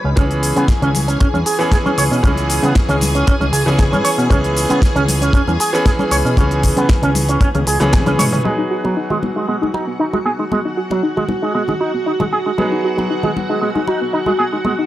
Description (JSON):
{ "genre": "nu-disco, nu disco", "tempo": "116 BPM", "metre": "4/4", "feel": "straight", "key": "C# minor", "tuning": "A4 = 444 Hz", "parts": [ { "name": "string machine, full ensemble", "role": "sustained chords", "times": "0.0-14.9 s", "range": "F#4 to B5", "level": "-24 LUFS", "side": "equal", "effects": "phaser, ensemble chorus, sidechain pumping" }, { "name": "fat analog bass", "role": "bass", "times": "0.0-8.4 s", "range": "C#2 to C#3", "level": "-18 LUFS", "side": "equal", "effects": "transformer saturation" }, { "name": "electric guitar with an envelope filter", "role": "riff", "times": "0.1-14.7 s", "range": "F#3 to C#5", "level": "-20 LUFS", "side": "right 2 dB", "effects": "lush chorus, low-pass filter, analog delay" }, { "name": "clear baby grand piano", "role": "accompaniment", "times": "0.2-14.9 s", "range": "E3 to G#4", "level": "-21 LUFS", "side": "equal", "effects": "sidechain pumping, analog delay" }, { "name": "kick drum", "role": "drums", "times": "0.2-8.0 s", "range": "none", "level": "-14 LUFS", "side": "equal", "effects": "studio ambience" }, { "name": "pop drum kit", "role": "drums", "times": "0.2-8.4 s", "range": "hi-hat, shaker, snare drum, toms", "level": "-22 LUFS", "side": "left 1 dB", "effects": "low-pass filter on hats, studio ambience, low-pass filter on perc, low-pass filter on snare, low-pass filter on toms" }, { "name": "congas", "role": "percussion", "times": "0.2-14.8 s", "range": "none", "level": "-25 LUFS", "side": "left 2 dB", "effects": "none" }, { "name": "soft round pluck", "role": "arpeggios", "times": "8.4-14.9 s", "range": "B3 to F#4", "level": "-22 LUFS", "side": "equal", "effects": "chorus, sidechain pumping, analog delay" } ], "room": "light reverb, small room ambience", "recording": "dry, gritty hardware recording", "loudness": "-14 LUFS", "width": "side -14 dB against mid", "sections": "0.0-8.4 A section; 8.4-14.9 B section", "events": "drum fill 7.4-8.4; band accent 7.9", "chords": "0.0 C#m7; 8.4 G#m7" }